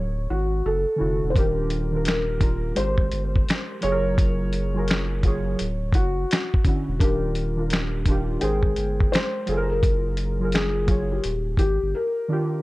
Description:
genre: lo-fi hip hop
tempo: 85 BPM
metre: 4/4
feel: swing 64% on 16ths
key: unclear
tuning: A4 = 439 Hz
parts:
  - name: felt-muted upright piano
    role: melody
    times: 0.0-12.6 s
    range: F#4 to Db5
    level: -27 LUFS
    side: left 1 dB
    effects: low-pass filter
  - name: saturated sub bass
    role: bass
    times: 0.0-11.9 s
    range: D1 to Ab1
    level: -26 LUFS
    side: equal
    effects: none
  - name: warbly lo-fi synth keys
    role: accompaniment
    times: 1.0-12.6 s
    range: D3 to G5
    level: -27 LUFS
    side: right 1 dB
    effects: chorus, cassette tape, low-pass filter
  - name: dusty soul sampler-style drum kit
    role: drums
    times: 1.4-11.8 s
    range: finger snaps, hi-hat, kick drum, snare drum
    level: -22 LUFS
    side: equal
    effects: none
room: light reverb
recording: dark, warm production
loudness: -21 LUFS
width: side -19 dB against mid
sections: 0.0-12.6 A section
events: none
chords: 0.0 Dmaj9; 1.4 Ebmaj9; 2.8 Abmaj9; 3.8 Gbmaj9; 5.6 Dmaj9; 7.0 Ebmaj9; 8.4 Abmaj9; 9.5 Gbmaj9; 11.2 Ebmaj9

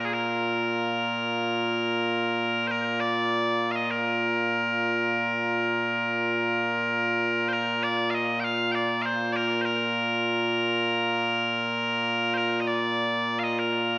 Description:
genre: scottish traditional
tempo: 99 BPM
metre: 4/4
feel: straight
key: Bb major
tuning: A4 = 440 Hz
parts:
  - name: loud bright bagpipes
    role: solo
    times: 0.0-14.0 s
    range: Bb2 to G5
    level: -26 LUFS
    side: equal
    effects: slapback echo
room: wet recital hall reverb, RT60 1.7 s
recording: none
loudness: -26 LUFS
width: mono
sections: 0.0-7.5 A section; 7.5-14.0 A section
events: none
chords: none

